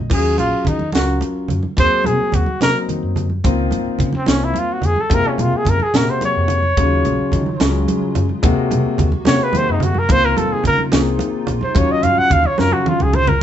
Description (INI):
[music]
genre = electric jazz fusion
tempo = 72 BPM (dotted quarters)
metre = 6/8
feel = straight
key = Eb dorian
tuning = A4 = 441 Hz
[part]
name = warm concert grand piano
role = accompaniment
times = 0.0-13.2 s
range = C3 to Bb4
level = -21 LUFS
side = left 4 dB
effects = none
[part]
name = woody fretless electric bass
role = bass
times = 0.0-13.4 s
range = Ab1 to Gb3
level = -20 LUFS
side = equal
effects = none
[part]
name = mellow trumpet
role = melody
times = 0.1-13.4 s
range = C4 to Gb5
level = -18 LUFS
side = right 1 dB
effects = none
[part]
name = tight funk drum kit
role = drums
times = 0.1-13.4 s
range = crash cymbal, hi-hat, kick drum, snare drum, toms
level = -19 LUFS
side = right 1 dB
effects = none
[part]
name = congas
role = percussion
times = 0.1-13.4 s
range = none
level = -24 LUFS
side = right 3 dB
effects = none
[part]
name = hollow soft pad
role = sustained chords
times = 6.8-13.4 s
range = C3 to Gb4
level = -27 LUFS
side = right 1 dB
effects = ensemble chorus
[sound]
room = moderate studio reverb, RT60 0.6 s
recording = band playing live in one room, nothing above 8.0 kHz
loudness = -14 LUFS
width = side -10 dB against mid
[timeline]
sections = 0.1-13.4 A section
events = trumpet solo 0.1-13.4; drum fill 12.6-13.4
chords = 0.1 Ebm11; 1.8 Ab9/Eb; 3.4 Dbmaj13; 5.1 Gbmaj9#11; 6.8 Ebm11; 8.4 Ab9/Eb; 10.1 Dbmaj13; 11.8 Ebm9